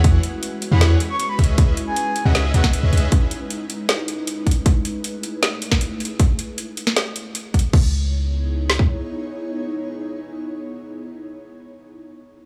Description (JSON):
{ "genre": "future bass", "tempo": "156 BPM", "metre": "4/4", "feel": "half-time", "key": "C# minor", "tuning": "A4 = 440 Hz", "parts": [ { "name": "ethereal airy pad", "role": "sustained chords", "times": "0.1-11.3 s", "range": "G#3 to C#5", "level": "-32 LUFS", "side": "equal", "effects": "ensemble chorus, built-in reverb, sidechain pumping" }, { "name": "big bright polysynth", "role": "riff", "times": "0.0-3.1 s", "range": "E3 to F#5", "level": "-30 LUFS", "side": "equal", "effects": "sidechain pumping, digital delay" }, { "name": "warm 808-style bass", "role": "bass", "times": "0.0-3.1, 7.7-8.8 s", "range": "C#2 to E2", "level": "-20 LUFS", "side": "equal", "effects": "sidechain pumping" }, { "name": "trap drum kit", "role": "drums", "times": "0.0-8.9 s", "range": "kick drum, snare drum", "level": "-19 LUFS", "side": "equal", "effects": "none" }, { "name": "trap drum kit", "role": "drums", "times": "0.0-7.8 s", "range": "crash cymbal, hi-hat, snare drum", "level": "-26 LUFS", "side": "equal", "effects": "none" }, { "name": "breathy flute-like synth lead", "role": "melody", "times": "0.7-2.7 s", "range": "F#5 to C#6", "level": "-30 LUFS", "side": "equal", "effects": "chorus, sidechain pumping, digital delay" } ], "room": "digital ambience", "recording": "studio ambience", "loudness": "-20 LUFS", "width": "mono", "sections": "0.0-7.7 A section; 7.7-10.8 B section", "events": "drop 0.0-7.7", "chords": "0.0 E69; 1.4 C#m9; 4.7 Amaj9; 6.2 N.C.; 7.7 C#m9", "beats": "| 0.04 0.43 0.81 1.20 | 1.58 1.97 2.35 2.73 | 3.12 3.50 3.89 4.27 | 4.66 5.04 5.43 5.81 | 6.20 6.58 6.96 7.35 | 7.74 8.12 8.50 8.89 | 9.27 9.66 10.04 10.43" }